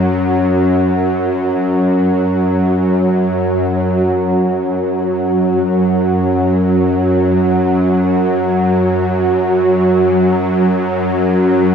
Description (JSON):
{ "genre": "ambient", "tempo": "free time", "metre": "none", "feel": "none", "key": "unclear", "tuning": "A4 = 439 Hz", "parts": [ { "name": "bowed-like drone", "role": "solo", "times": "0.0-11.7 s", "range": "F#2 to F#3", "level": "-12 LUFS", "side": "equal", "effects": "built-in reverb, ping-pong delay" } ], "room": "wet lush hall reverb, RT60 2.6 s", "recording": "dreamy mix soaked in reverb", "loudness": "-12 LUFS", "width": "side -7 dB against mid", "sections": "0.0-4.2 A section; 4.2-11.7 B section", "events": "none", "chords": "none", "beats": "free time" }